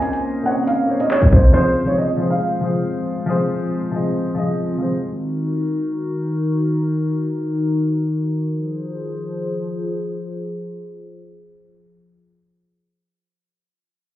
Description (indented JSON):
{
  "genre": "hip hop, drill",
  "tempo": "138 BPM",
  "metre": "4/4",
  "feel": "half-time",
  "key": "F phrygian",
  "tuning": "A4 = 441 Hz",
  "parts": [
    { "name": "dark upright piano", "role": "melody", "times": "0.0-3.2 s", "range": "C5 to Ab5", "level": "-21 LUFS", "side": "right 1 dB", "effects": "low-pass filter, ping-pong delay" },
    { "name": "warm baby grand piano", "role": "accompaniment", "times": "0.0-5.0 s", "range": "F3 to Eb5", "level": "-21 LUFS", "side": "left 2 dB", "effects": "low-pass filter" },
    { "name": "warbly tape-like pad", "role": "sustained chords", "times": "0.0-11.8 s", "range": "Eb3 to C5", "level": "-22 LUFS", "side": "left 1 dB", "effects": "chorus, built-in reverb, low-pass filter" },
    { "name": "drill drum kit", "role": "drums", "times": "0.0-1.4 s", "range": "handclaps, hi-hat, kick drum", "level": "-12 LUFS", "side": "equal", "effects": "none" }
  ],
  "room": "light reverb",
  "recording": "heard muffled through a wall, club reverb, EQ",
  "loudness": "-18 LUFS",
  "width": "side -14 dB against mid",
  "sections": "0.0-8.5 A section; 8.5-12.0 B section",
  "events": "filter sweep 0.0-8.5",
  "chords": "0.0 Bbmadd9; 1.5 Fm; 5.0 Ebm; 8.5 Fm",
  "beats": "0.24 0.67 1.11 | 1.54 1.98 2.41 2.85 | 3.28 3.72 4.15 4.59 | 5.02 5.46 5.89 6.33 | 6.76 7.20 7.63 8.06 | 8.50 8.93 9.37 9.80 | 10.24 10.67 11.11 11.54"
}